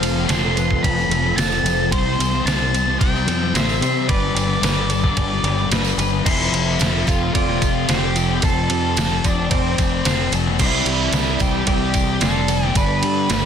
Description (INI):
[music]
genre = rock, shoegaze and dream pop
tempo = 111 BPM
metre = 4/4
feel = straight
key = unclear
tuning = A4 = 436 Hz
[part]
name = octave-fuzz lead guitar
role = melody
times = 0.0-13.5 s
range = C4 to C6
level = -24 LUFS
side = equal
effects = distortion, tape echo
[part]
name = electric guitar through a small old amp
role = arpeggios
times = 0.0-13.5 s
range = G4 to D5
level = -28 LUFS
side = equal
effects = wide subtle chorus, tape echo
[part]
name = overdriven semi-hollow guitar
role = riff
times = 0.0-13.5 s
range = F2 to C5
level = -27 LUFS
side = right 14 dB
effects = reverse reverb
[part]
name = thick fuzz guitar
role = riff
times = 0.0-13.5 s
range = F2 to C4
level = -23 LUFS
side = left 12 dB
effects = distortion, analog chorus
[part]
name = growling fingered electric bass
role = bass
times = 0.0-13.5 s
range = F1 to C3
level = -23 LUFS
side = equal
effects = overdrive
[part]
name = detuned 8-bit digital drum machine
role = drums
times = 0.0-13.4 s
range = crash cymbal, kick drum, ride cymbal, snare drum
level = -21 LUFS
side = right 1 dB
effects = none
[part]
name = tambourine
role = percussion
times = 0.0-13.4 s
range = none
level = -33 LUFS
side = right 16 dB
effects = none
[sound]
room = digital ambience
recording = dense, heavily limited modern master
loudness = -16 LUFS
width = side -8 dB against mid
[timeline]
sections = 0.0-6.3 A section; 6.3-13.5 B section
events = none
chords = 0.0 F; 1.9 C; 4.1 G; 6.3 F; 10.6 Cadd9; 12.8 G